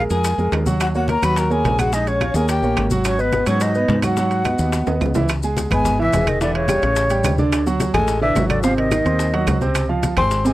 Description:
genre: Afro-Cuban jazz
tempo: 214 BPM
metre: 4/4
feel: straight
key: G# minor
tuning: A4 = 442 Hz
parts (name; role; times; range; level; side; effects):
- mellow silver concert flute; melody; 0.0-10.5 s; B4 to B#5; -22 LUFS; equal; tape echo
- growling tenor saxophone; second line; 0.0-10.5 s; C#3 to B4; -27 LUFS; left 5 dB; none
- warm baby grand piano; accompaniment; 0.0-10.5 s; B#2 to C#6; -21 LUFS; right 2 dB; none
- woody fretless electric bass; bass; 0.0-10.5 s; E1 to G#2; -22 LUFS; equal; none
- bongos; percussion; 0.1-10.5 s; none; -30 LUFS; left 5 dB; none
- congas; percussion; 0.1-10.5 s; none; -26 LUFS; left 1 dB; none
- maracas; percussion; 0.1-10.5 s; none; -35 LUFS; left 6 dB; none
- timbales; percussion; 0.2-10.3 s; none; -27 LUFS; right 6 dB; none
- claves; percussion; 0.5-10.3 s; none; -30 LUFS; right 5 dB; none
room: little or no reverb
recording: dry, close 1970s-style studio recording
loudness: -16 LUFS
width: side -16 dB against mid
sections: 0.0-5.3 A section; 5.3-10.5 B section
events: drum fill 4.9-5.3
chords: 0.0 A#5; 0.8 D#m7; 1.9 A#m7; 2.5 D#7; 3.1 G#m7; 5.3 C#m7; 6.4 Emadd11; 7.0 A7; 7.5 Dadd9; 8.6 G#7; 9.8 C#maj7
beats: 0.25 0.53 | 0.81 1.09 1.37 1.65 | 1.93 2.21 2.49 2.77 | 3.05 3.33 3.61 3.89 | 4.17 4.46 4.74 5.01 | 5.29 5.57 5.85 6.13 | 6.41 6.69 6.97 7.25 | 7.53 7.81 8.09 8.37 | 8.64 8.92 9.20 9.48 | 9.76 10.04 10.31

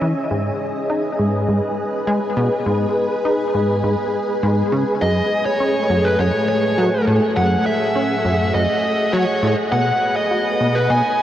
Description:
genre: ambient, sequencer-driven space music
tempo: 102 BPM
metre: 4/4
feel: straight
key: G# phrygian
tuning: A4 = 438 Hz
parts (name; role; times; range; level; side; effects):
- string machine, full ensemble; sustained chords; 0.0-11.2 s; A3 to G#5; -21 LUFS; equal; ensemble chorus
- plucky analog bass; riff; 0.0-11.0 s; F#2 to F#4; -21 LUFS; equal; lush chorus, ping-pong delay
- wind-like tuned noise texture; texture; 0.1-11.2 s; G#4 to G#5; -31 LUFS; right 2 dB; none
- bluesy overdriven lead guitar; melody; 5.0-11.2 s; B4 to G#5; -19 LUFS; equal; distortion, ping-pong delay
room: wet huge ambient reverb, RT60 7.5 s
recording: worn, warbling old tape, cassette tape, warbly pitch drift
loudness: -16 LUFS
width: side -11 dB against mid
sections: 0.0-11.2 A section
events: none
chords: 0.3 G#m; 5.0 F#madd9; 9.7 B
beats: | 0.31 0.90 1.49 2.07 | 2.66 3.25 3.84 4.43 | 5.01 5.60 6.19 6.78 | 7.37 7.96 8.54 9.13 | 9.72 10.31 10.90

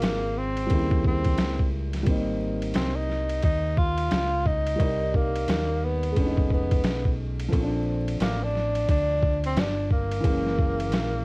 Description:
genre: hip hop, jazz-hop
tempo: 88 BPM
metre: 4/4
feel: swing 62% on 16ths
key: unclear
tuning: A4 = 440 Hz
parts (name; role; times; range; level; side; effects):
- breathy tenor saxophone; melody; 0.0-11.2 s; Bb3 to F4; -28 LUFS; equal; cassette tape
- dark grand piano; accompaniment; 0.0-11.2 s; Db3 to D5; -30 LUFS; equal; none
- deep dub fingered electric bass; bass; 0.0-11.2 s; F1 to Eb2; -28 LUFS; equal; none
- boom bap sampler-style drum kit; drums; 0.0-11.1 s; hi-hat, kick drum, ride cymbal, snare drum; -26 LUFS; equal; cassette tape
room: moderate studio reverb, RT60 0.6 s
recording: home recording on cassette, vinyl crackle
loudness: -22 LUFS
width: side -28 dB against mid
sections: 0.0-11.2 A section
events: grand piano fill 10.9-11.2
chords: 0.0 Bbm7; 0.7 Eb7b9; 2.1 Abmaj9; 4.8 Cm7; 6.2 F7alt; 7.5 Bbmaj7; 10.2 Gb9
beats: 0.02 0.70 1.38 | 2.06 2.75 3.43 4.11 | 4.79 5.47 6.15 6.84 | 7.52 8.20 8.88 9.56 | 10.24 10.93

